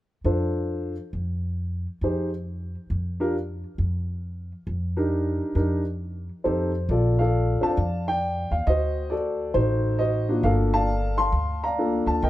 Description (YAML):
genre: jazz piano trio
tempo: 135 BPM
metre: 4/4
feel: swing 65% on 8ths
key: unclear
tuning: A4 = 441 Hz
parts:
  - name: warm upright piano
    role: melody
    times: 0.2-12.3 s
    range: Bb3 to C6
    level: -24 LUFS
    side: left 1 dB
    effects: plate reverb
  - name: upright bass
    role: bass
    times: 0.2-12.3 s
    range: G1 to F2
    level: -26 LUFS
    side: equal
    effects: none
room: moderate small room reverb, RT60 0.5 s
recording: none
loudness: -23 LUFS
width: side -15 dB against mid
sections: 0.0-6.9 A section; 6.9-12.3 B section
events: none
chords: 0.0 F6; 6.9 Bbmaj7; 8.7 D7b9; 10.4 Gm9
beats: 0.25 0.69 1.13 | 1.58 2.02 2.46 2.91 | 3.35 3.79 4.23 4.68 | 5.12 5.56 6.00 6.45 | 6.89 7.33 7.78 8.22 | 8.67 9.11 9.56 10.00 | 10.45 10.89 11.34 11.78 | 12.23